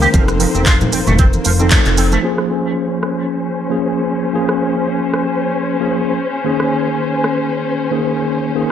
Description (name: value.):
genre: nu-disco, nu disco.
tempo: 114 BPM.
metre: 4/4.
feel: swing 55% on 16ths.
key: Bb minor.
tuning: A4 = 440 Hz.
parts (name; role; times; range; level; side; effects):
bright tine electric piano; accompaniment; 0.0-8.7 s; Eb3 to A4; -18 LUFS; equal; medium stereo tremolo, sidechain pumping, digital delay.
dark symphonic string section; sustained chords; 0.0-8.7 s; Bb3 to C5; -21 LUFS; left 2 dB; sidechain pumping, low-pass filter.
electric guitar with an envelope filter; riff; 0.0-2.2 s; F2 to G4; -20 LUFS; right 3 dB; analog chorus, digital delay.
chorused synth bass; bass; 0.0-2.2 s; F1; -16 LUFS; equal; sidechain pumping.
pop drum kit; drums; 0.0-7.4 s; handclaps, hi-hat, rim click, shaker; -19 LUFS; right 1 dB; low-pass filter on hats, studio ambience, low-pass filter on perc, low-pass filter on snare.
electronic kick drum; drums; 0.1-1.8 s; none; -12 LUFS; equal; studio ambience.
congas; percussion; 0.1-1.7 s; none; -22 LUFS; left 1 dB; none.
room: light reverb, digital ambience.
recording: none.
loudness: -14 LUFS.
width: side -9 dB against mid.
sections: 0.0-2.2 A section; 2.2-8.7 B section.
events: band accent 1.7; filter sweep on string section 2.2-8.7.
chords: 0.1 F7; 2.2 Bbm7; 6.2 Eb7sus4.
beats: | 0.14 0.66 1.19 1.72 | 2.24 2.77 3.29 3.82 | 4.35 4.87 5.40 5.93 | 6.45 6.98 7.50 8.03 | 8.56.